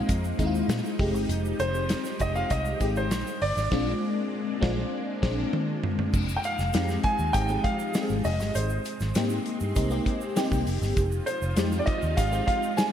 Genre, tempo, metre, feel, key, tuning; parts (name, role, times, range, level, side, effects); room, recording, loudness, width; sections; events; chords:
polished 1980s jazz-funk pop; 99 BPM; 4/4; straight; A4 = 445 Hz
warm baby grand piano; melody; 0.0-12.8 s; C5 to Ab5; -30 LUFS; right 1 dB; wide subtle chorus
FM electric piano with soft pad layer; accompaniment; 0.0-12.9 s; G3 to Ab4; -30 LUFS; left 2 dB; phaser, analog chorus
string machine, full ensemble; sustained chords; 0.0-12.9 s; F3 to G4; -36 LUFS; right 1 dB; ensemble chorus
vintage muted fingered electric bass; bass; 0.1-12.4 s; F1 to Bb2; -29 LUFS; equal
modern studio drum kit; drums; 0.1-12.9 s; crash cymbal, hi-hat, kick drum, snare drum, toms; -29 LUFS; equal; gated reverb
egg shaker; percussion; 0.1-12.9 s; -46 LUFS; right 8 dB
moderate lush hall reverb, RT60 1.8 s, small room ambience; bright 1980s-style digital production; -24 LUFS; side -9 dB against mid
0.0-6.1 A section; 6.1-12.9 B section
band accent 3.7-6.1; drum fill 4.9-6.1
0.0 Bb7sus4; 1.0 Fm9; 3.1 Bb9; 6.1 Fm9; 8.6 Abmaj9; 11.0 Fm9